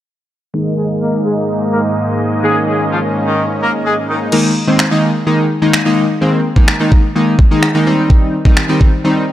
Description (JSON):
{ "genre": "dance-pop", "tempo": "127 BPM", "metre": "4/4", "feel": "straight", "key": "Ab major", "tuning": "A4 = 441 Hz", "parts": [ { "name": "chorused retro synth keys", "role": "accompaniment", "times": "0.5-9.2 s", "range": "Eb3 to Eb4", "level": "-14 LUFS", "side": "equal", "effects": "sidechain pumping, low-pass filter" }, { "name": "soft supersaw", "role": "sustained chords", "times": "0.5-4.3 s", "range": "Ab2 to Eb5", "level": "-17 LUFS", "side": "equal", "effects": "sidechain pumping, low-pass filter" }, { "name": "clear horn section", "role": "melody", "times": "0.8-4.2 s", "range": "Eb3 to Bb4", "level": "-18 LUFS", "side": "left 1 dB", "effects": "sidechain pumping, low-pass filter, analog delay" }, { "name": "smooth R&B drum kit", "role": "drums", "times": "4.3-8.9 s", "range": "crash cymbal, finger snaps, kick drum", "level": "-12 LUFS", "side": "equal", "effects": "none" } ], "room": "light reverb, digital ambience", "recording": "dry, gritty hardware recording", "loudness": "-11 LUFS", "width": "side -13 dB against mid", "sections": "0.5-4.3 A section; 4.3-9.3 B section", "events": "filter sweep 0.5-4.3", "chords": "0.5 Absus2; 7.9 Cm" }